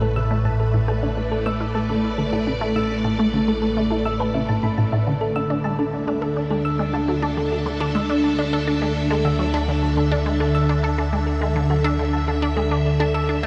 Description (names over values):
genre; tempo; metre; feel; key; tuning
ambient, sequencer-driven space music; 104 BPM; 4/4; straight; unclear; A4 = 440 Hz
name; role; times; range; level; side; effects
phased string machine; sustained chords; 0.0-13.5 s; A2 to E5; -25 LUFS; equal; ensemble chorus, phaser, shimmer reverb
thumb-piano-like synth pluck; arpeggios; 0.0-13.5 s; A4 to E6; -30 LUFS; equal; chorus, analog delay, shimmer reverb
resonant blip pluck; riff; 0.0-13.5 s; A2 to A4; -27 LUFS; equal; phaser, analog delay, shimmer reverb
analog drone; bass; 0.0-13.5 s; A1 to D2; -29 LUFS; equal; chorus
room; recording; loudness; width
wet huge ambient reverb, RT60 7.8 s; dark, warm production; -21 LUFS; mono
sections
0.0-13.5 A section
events
filter sweep on synth arpeggio sound 0.0-13.5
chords
0.0 Asus2; 5.1 Dsus2